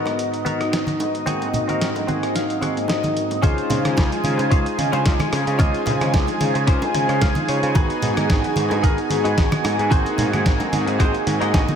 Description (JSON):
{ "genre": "nu-disco, nu disco", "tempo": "111 BPM", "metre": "4/4", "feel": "swing 54% on 16ths", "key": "Db major", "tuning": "A4 = 441 Hz", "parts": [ { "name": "mellow synth brass", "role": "accompaniment", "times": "0.0-11.8 s", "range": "Ab2 to C5", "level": "-25 LUFS", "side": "equal", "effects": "chorus, tape echo" }, { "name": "lush unison pad", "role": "sustained chords", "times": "0.0-11.8 s", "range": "Eb4 to Ab5", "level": "-25 LUFS", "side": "equal", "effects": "chorus, phaser, sidechain pumping" }, { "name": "direct-recorded clean electric guitar", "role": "riff", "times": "0.0-11.8 s", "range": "Cb4 to Ab5", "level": "-27 LUFS", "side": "left 1 dB", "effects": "wide subtle chorus, low-pass filter, tape echo" }, { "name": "dusty soul sampler-style drum kit", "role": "drums", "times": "0.1-11.8 s", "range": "hi-hat, rim click, snare drum", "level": "-27 LUFS", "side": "equal", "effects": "none" }, { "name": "bongos and congas", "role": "percussion", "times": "0.1-11.8 s", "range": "none", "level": "-27 LUFS", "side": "right 2 dB", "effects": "none" }, { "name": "overdriven picked electric bass", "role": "bass", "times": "3.4-11.7 s", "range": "Ab1 to Db3", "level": "-24 LUFS", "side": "equal", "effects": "none" }, { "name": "electronic kick drum", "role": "drums", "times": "3.4-11.7 s", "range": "none", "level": "-18 LUFS", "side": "equal", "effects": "none" } ], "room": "moderate lush hall reverb, RT60 1.9 s", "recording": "dreamy mix soaked in reverb", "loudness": "-17 LUFS", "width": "side -8 dB against mid", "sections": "0.0-3.4 A section; 3.4-11.8 B section", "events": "clean electric guitar fill 1.8-3.4, 6.7-7.8, 11.3-11.8; drop 3.4-11.8", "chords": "0.0 Abm7; 1.3 Ab7; 3.4 Dbmaj7; 7.8 Abm7; 9.9 Ab7" }